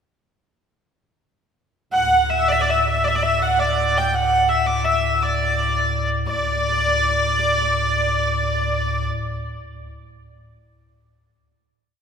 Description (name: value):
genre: medieval dance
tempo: 107-122 BPM (dotted quarters)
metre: 6/8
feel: straight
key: D major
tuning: A4 = 440 Hz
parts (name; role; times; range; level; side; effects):
- clear hurdy-gurdy; melody; 1.9-9.1 s; D5 to G5; -18 LUFS; equal; none
- pipe organ, stopped flute; drone; 1.9-9.1 s; D2 to A2; -25 LUFS; equal; none
room: wet church reverb, RT60 3.0 s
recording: band playing live in one room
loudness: -17 LUFS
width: side -6 dB against mid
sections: 1.9-6.3 A section; 6.3-8.3 final chord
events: speeding up 1.9-8.3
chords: none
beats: | 1.91 2.47 | 3.03 3.58 | 4.13 4.67 | 5.21 5.75 | 6.27 6.79 | 7.30 7.80